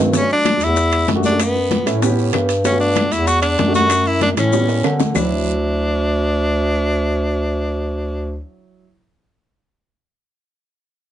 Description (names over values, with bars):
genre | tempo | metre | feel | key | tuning
Afro-Cuban jazz | 191 BPM | 4/4 | straight | D major | A4 = 440 Hz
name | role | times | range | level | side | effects
warm upright piano | accompaniment | 0.0-8.9 s | Eb3 to C#5 | -23 LUFS | right 2 dB | none
mellow bass clarinet | bass | 0.0-8.4 s | D2 to D3 | -19 LUFS | equal | none
bongos | percussion | 0.1-5.2 s | none | -24 LUFS | left 6 dB | none
congas | percussion | 0.1-5.2 s | none | -24 LUFS | left 2 dB | none
guiro | percussion | 0.1-5.2 s | none | -34 LUFS | right 8 dB | none
maracas | percussion | 0.1-5.2 s | none | -32 LUFS | left 9 dB | none
edgy tenor saxophone | melody | 0.2-8.4 s | B3 to F#4 | -19 LUFS | equal | none
timbales | percussion | 0.2-5.2 s | none | -26 LUFS | right 8 dB | none
claves | percussion | 0.5-5.2 s | none | -30 LUFS | left 8 dB | none
room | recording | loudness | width
light reverb | dark, warm production, nothing above 11.0 kHz | -15 LUFS | side -11 dB against mid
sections
0.1-5.2 A section; 5.2-7.7 B section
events
drum fill 4.4-5.2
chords
0.1 Gmaj7sus2; 1.4 F#m7; 2.0 A7; 2.6 Gmaj9; 3.3 Em11; 3.9 F#m7; 4.5 A7; 5.2 Dmaj9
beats
| 0.14 0.45 0.77 1.08 | 1.39 1.71 2.02 2.33 | 2.65 2.96 3.28 3.59 | 3.90 4.22 4.53 4.84 | 5.16 5.47 5.78 6.10 | 6.41 6.72 7.04 7.35